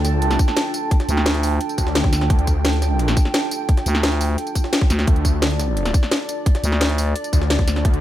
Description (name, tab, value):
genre	dark technical drum and bass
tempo	173 BPM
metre	4/4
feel	straight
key	D minor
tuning	A4 = 441 Hz
part	dark analog pad	sustained chords	0.0-8.0 s	D4 to G5	-26 LUFS	right 1 dB	chorus, sidechain pumping
part	wide detuned saw bass	bass	0.0-8.0 s	D2	-20 LUFS	equal	chorus, overdrive, sidechain pumping
part	drum and bass drum kit	drums	0.0-8.0 s	hi-hat, snare drum, tambourine	-23 LUFS	left 1 dB	overdrive
part	jungle sampler-style drum kit	drums	0.0-7.9 s	hi-hat, snare drum	-31 LUFS	equal	high-pass filter on hats, high-pass filter on snare
part	deep dark ambient pad	texture	0.0-8.0 s	A5	-32 LUFS	right 5 dB	chorus, built-in reverb, sidechain pumping
part	electronic kick drum	drums	0.4-7.9 s	none	-17 LUFS	equal	overdrive
part	growling FM bass	bass	1.1-1.6, 3.9-7.1 s	D2	-19 LUFS	equal	none
room	digital ambience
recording	none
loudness	-16 LUFS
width	side -13 dB against mid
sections	0.0-8.0 A section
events	none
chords	0.0 Dm